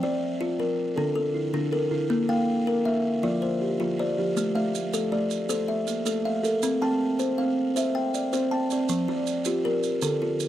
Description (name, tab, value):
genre	southern african traditional, mbira-style interlocking cycle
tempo	106 BPM (dotted quarters)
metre	12/8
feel	straight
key	F major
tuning	A4 = 440 Hz
part	buzzing kalimba	arpeggios	0.0-10.2 s	D3 to G5	-27 LUFS	right 3 dB	none
part	kalimba	arpeggios	0.0-10.5 s	D3 to A5	-26 LUFS	left 3 dB	none
part	maracas	percussion	4.4-10.5 s	none	-35 LUFS	right 13 dB	none
room	little or no reverb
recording	dry, close 1970s-style studio recording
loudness	-23 LUFS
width	side -12 dB against mid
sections	0.0-8.9 A section; 8.9-10.5 B section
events	none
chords	0.0 F5; 1.0 D5; 2.1 Bb; 3.2 F5; 4.4 Am; 6.6 C; 8.9 F